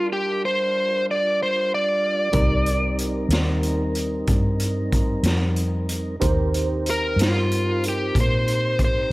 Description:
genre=slow blues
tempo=62 BPM (dotted quarters)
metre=12/8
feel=straight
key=unclear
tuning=A4 = 440 Hz
part: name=smooth overdriven lead guitar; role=melody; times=0.0-9.1 s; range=F4 to D5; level=-22 LUFS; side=equal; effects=none
part: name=barky tine electric piano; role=accompaniment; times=0.0-9.1 s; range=G3 to A5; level=-31 LUFS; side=right 3 dB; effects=ensemble chorus
part: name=mellow tonewheel organ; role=sustained chords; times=0.0-9.1 s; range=G3 to Bb4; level=-29 LUFS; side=equal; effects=slow rotary speaker
part: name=vintage muted fingered electric bass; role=bass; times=2.3-9.1 s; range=C2 to Bb2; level=-23 LUFS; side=equal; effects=none
part: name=raw garage drum kit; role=drums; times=2.3-8.9 s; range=hi-hat, kick drum, snare drum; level=-24 LUFS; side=equal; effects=none
room=light reverb, studio ambience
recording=none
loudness=-19 LUFS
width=side -20 dB against mid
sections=0.0-9.1 A section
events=none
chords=0.0 Gm7; 2.3 Cm7

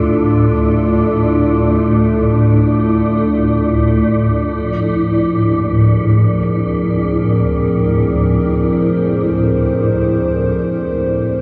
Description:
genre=dark ambient drone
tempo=free time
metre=none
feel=none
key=unclear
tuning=A4 = 440 Hz
part: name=dark analog pad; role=sustained chords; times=0.0-11.4 s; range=F3 to C5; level=-18 LUFS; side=equal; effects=chorus
part: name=swarming drone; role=drone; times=0.0-11.4 s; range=D2 to A2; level=-18 LUFS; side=equal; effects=built-in reverb, phaser
part: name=wind-like tuned noise texture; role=texture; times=0.0-11.4 s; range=D4 to D5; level=-26 LUFS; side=equal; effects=built-in reverb
part: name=dark baby grand piano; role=arpeggios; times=5.5-11.4 s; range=Eb2 to Eb3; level=-36 LUFS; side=equal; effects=none
room=wet huge ambient reverb, RT60 7.6 s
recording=dreamy mix soaked in reverb, cassette tape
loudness=-15 LUFS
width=mono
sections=0.0-11.4 A section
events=none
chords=0.0 Dm; 4.5 Fm

